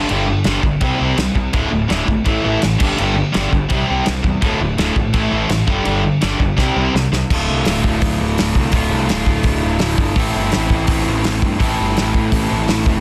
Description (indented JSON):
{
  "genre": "punk rock",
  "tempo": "167 BPM",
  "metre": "4/4",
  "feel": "straight",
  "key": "D minor",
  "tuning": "A4 = 436 Hz",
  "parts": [
    { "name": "cranked stack guitar", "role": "riff", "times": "0.0-7.3 s", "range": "D2 to C4", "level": "-22 LUFS", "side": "equal", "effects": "overdrive" },
    { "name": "raw garage guitar", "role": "riff", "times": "0.0-13.0 s", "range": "D2 to A4", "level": "-22 LUFS", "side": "equal", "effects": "overdrive" },
    { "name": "fuzz picked electric bass", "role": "bass", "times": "0.0-13.0 s", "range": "D1 to G2", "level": "-23 LUFS", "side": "equal", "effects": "overdrive" },
    { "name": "loose indie drum kit", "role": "drums", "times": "0.1-12.9 s", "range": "crash cymbal, hi-hat, kick drum, snare drum", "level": "-22 LUFS", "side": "equal", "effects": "none" }
  ],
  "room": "little or no reverb",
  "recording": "dense, heavily limited modern master",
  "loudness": "-17 LUFS",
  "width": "mono",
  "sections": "0.0-7.3 A section; 7.3-13.0 B section",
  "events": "drum fill 6.6-7.3",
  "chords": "0.0 G5; 0.8 C5; 1.5 D5; 2.3 A5; 2.8 G5; 3.7 C; 4.4 D5; 5.1 A5; 5.7 G5; 6.6 C5; 7.3 Dm; 10.2 Am"
}